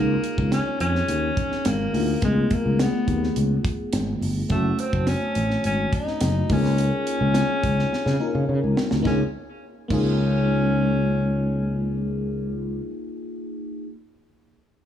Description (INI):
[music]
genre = polished 1980s jazz-funk pop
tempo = 106 BPM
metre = 4/4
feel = straight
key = Db major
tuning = A4 = 438 Hz
[part]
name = breathy alto saxophone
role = melody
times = 0.0-12.1 s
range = Ab3 to Eb4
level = -27 LUFS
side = left 1 dB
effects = tape echo
[part]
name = FM electric piano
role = accompaniment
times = 0.0-13.9 s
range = A3 to Bb4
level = -27 LUFS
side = left 2 dB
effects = phaser, lush chorus
[part]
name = sustaining fretless electric bass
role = bass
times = 0.0-12.8 s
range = Gb1 to Db3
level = -23 LUFS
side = equal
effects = none
[part]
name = tight funk drum kit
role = drums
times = 0.2-10.1 s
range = crash cymbal, hi-hat, kick drum, snare drum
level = -28 LUFS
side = right 1 dB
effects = gated reverb
[sound]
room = studio reverb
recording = small room ambience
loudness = -20 LUFS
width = side -10 dB against mid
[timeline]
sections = 0.0-9.1 A section; 9.1-11.3 B section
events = drum fill 7.9-9.1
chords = 0.0 Db69; 2.2 Db7b13; 4.5 Gbm; 6.5 Db6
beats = 0.52 1.09 1.66 | 2.23 2.80 3.37 3.93 | 4.50 5.07 5.64 6.21 | 6.78 7.35 7.92 8.48 | 9.05 9.62 10.19 10.76